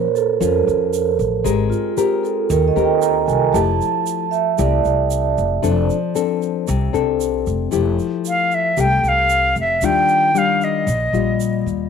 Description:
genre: bossa nova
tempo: 115 BPM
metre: 4/4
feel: straight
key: F major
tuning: A4 = 441 Hz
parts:
  - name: nylon-string guitar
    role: accompaniment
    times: 0.0-11.9 s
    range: Bb2 to Bb4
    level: -21 LUFS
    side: left 11 dB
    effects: none
  - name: vibraphone with soft mallets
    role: accompaniment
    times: 0.0-6.1 s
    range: F4 to Bb5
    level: -18 LUFS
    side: right 10 dB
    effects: none
  - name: egg shaker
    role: percussion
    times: 0.2-11.9 s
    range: none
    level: -35 LUFS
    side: right 15 dB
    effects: none
  - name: upright bass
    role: bass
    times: 0.4-11.9 s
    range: F1 to F2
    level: -22 LUFS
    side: equal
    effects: none
  - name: silver concert flute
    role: melody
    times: 8.3-11.7 s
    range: Eb5 to G5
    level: -16 LUFS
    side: equal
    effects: none
room: wet spring reverb, RT60 1.4 s, small room ambience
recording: 1960s-style stereo with parts hard left and right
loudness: -15 LUFS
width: side -6 dB against mid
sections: 0.0-7.7 A section; 7.7-11.9 B section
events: vibraphone solo 0.0-7.7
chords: 0.0 Bbm; 1.5 Abmaj9; 3.5 Fmaj9; 5.6 F6; 7.7 Fmaj9; 9.8 Ebmaj9

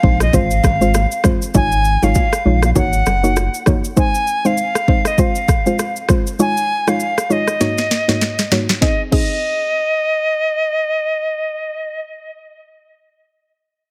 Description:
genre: afrobeats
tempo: 99 BPM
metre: 4/4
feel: swing 58% on 16ths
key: Ab mixolydian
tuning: A4 = 440 Hz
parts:
  - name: bright reedy silver concert flute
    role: melody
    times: 0.0-12.0 s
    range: Eb5 to Ab5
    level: -21 LUFS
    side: equal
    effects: digital delay
  - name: soft round pluck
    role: accompaniment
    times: 0.0-12.4 s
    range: Ab2 to Eb5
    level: -22 LUFS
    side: equal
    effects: chorus
  - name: warm sub bass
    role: bass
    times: 0.0-3.5 s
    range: Gb1 to Bb1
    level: -19 LUFS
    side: equal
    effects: none
  - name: afro-pop drum kit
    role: drums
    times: 0.0-9.3 s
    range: crash cymbal, kick drum, rim click, shaker, snare drum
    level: -20 LUFS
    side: equal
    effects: none
  - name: bongos and congas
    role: percussion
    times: 0.2-3.8 s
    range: none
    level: -27 LUFS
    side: equal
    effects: none
room: light reverb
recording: heavily compressed radio sound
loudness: -16 LUFS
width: mono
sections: 0.0-8.8 A section; 8.8-11.2 B section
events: drum fill 7.6-8.8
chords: 0.3 Fm/Ab; 1.5 Dbadd9/Ab; 2.8 Gb6; 4.0 Ab; 5.2 Fm/Ab; 6.4 Dbadd9/Ab; 7.6 Gb6/Ab; 8.8 Ab

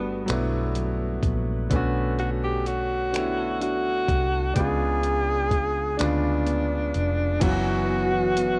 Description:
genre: slow six-eight R&B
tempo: 42 BPM (dotted quarters)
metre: 6/8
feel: straight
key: B minor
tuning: A4 = 440 Hz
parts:
  - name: breathy tenor saxophone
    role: melody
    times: 0.0-8.6 s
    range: B3 to G#4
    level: -28 LUFS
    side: equal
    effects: none
  - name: semi-hollow electric guitar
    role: second line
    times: 0.0-8.6 s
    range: F#2 to C#5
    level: -36 LUFS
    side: equal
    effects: vibrato effect
  - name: bright concert grand piano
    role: accompaniment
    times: 0.0-8.6 s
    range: C#3 to C#5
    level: -31 LUFS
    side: equal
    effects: none
  - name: vintage muted fingered electric bass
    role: bass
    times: 0.0-8.6 s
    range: E#1 to D2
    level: -30 LUFS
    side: equal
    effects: none
  - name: dusty soul sampler-style drum kit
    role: drums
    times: 0.3-8.6 s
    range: crash cymbal, finger snaps, hi-hat, kick drum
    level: -30 LUFS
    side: equal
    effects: overdrive
  - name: mellow tonewheel organ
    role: sustained chords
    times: 7.4-8.6 s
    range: B4 to C#6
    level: -37 LUFS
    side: equal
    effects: slow rotary speaker
room: little or no reverb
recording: worn, warbling old tape, cassette tape, warbly pitch drift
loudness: -25 LUFS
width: mono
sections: 0.0-7.4 A section; 7.4-8.6 B section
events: none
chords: 0.0 Gmaj7; 1.7 Bm9; 4.6 C#7b9; 7.4 F#7sus4

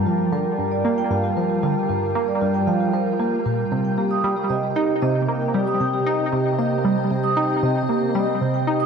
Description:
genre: ambient, sequencer-driven space music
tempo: 115 BPM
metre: 4/4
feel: straight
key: unclear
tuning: A4 = 440 Hz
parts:
  - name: evolving wavetable pad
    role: sustained chords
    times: 0.0-8.9 s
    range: C3 to A5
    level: -24 LUFS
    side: equal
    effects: chorus, built-in reverb
  - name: tight sequenced synth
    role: riff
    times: 0.0-8.9 s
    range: G2 to Eb4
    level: -22 LUFS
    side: right 1 dB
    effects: chorus, tape echo
  - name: vibraphone with medium mallets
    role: arpeggios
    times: 0.1-8.9 s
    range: F4 to Eb6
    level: -25 LUFS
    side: moving between left 3 dB and right 5 dB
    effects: auto-pan, tape echo
room: wet spring reverb, RT60 2.3 s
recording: echo-heavy mix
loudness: -19 LUFS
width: side -6 dB against mid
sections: 0.0-8.9 A section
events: none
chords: 0.0 Gm7; 3.7 Cm

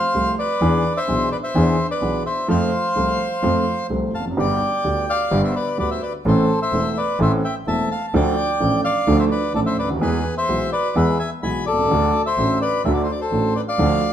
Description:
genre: tango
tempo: 128 BPM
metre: 4/4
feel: rubato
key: unclear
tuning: A4 = 441 Hz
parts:
  - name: bandoneon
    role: melody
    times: 0.0-14.1 s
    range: G#4 to B5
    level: -21 LUFS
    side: equal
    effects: none
  - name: warm upright piano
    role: accompaniment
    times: 0.1-14.0 s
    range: E1 to A4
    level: -22 LUFS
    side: right 1 dB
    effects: none
  - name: clear double bass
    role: bass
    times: 0.1-14.0 s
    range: E1 to F2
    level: -24 LUFS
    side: right 1 dB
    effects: none
room: wet large studio reverb, RT60 1.4 s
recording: minimal, uncompressed stereo recording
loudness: -17 LUFS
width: side -10 dB against mid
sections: 0.0-14.1 A section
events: none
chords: 0.0 Fadd9; 0.6 E7; 2.5 F; 4.4 G; 6.3 Am; 8.1 Dm; 10.0 E; 11.9 D

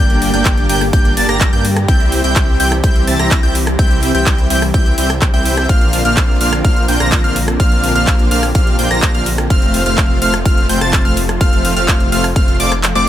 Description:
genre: EDM, festival progressive house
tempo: 126 BPM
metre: 4/4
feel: straight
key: F major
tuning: A4 = 440 Hz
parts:
  - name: lush unison pad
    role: sustained chords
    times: 0.0-13.1 s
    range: C3 to G4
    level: -22 LUFS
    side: equal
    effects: chorus, phaser, sidechain pumping
  - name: plucky unison lead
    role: arpeggios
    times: 0.0-13.1 s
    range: D6 to Bb6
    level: -19 LUFS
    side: equal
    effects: sidechain pumping, dub echo
  - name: dense compressed supersaw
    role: riff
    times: 0.0-13.1 s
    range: A3 to Bb5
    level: -19 LUFS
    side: equal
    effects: sidechain pumping, dub echo
  - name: wide detuned saw bass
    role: bass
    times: 0.0-13.1 s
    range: F1 to G2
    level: -19 LUFS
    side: equal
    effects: chorus, sidechain pumping
  - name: big-room dance drum kit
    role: drums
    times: 0.1-13.1 s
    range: handclaps, hi-hat, rim click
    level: -20 LUFS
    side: equal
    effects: none
  - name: electronic kick drum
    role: drums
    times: 0.5-12.5 s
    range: none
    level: -13 LUFS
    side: equal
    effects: none
room: little or no reverb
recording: none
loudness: -11 LUFS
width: side -12 dB against mid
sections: 0.0-13.1 A section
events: kick drops out 12.8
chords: 0.0 Gm; 1.9 C; 5.7 Bbadd9; 9.5 F

